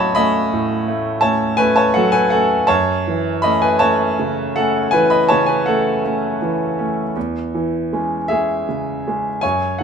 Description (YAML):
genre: classical, romantic nocturne for solo piano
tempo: 54 BPM (dotted quarters)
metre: 12/8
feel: rubato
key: unclear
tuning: A4 = 440 Hz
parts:
  - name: bright grand piano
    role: solo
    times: 0.0-9.8 s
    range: E2 to C#6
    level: -15 LUFS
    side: equal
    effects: none
room: light reverb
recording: faint mains hum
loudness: -15 LUFS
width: side -7 dB against mid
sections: 0.0-9.8 A section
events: none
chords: 0.0 F#m/A; 2.7 F#m7; 7.2 C#m/E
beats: 0.50 1.58 | 2.69 3.81 4.94 6.05 | 7.16 8.31 9.43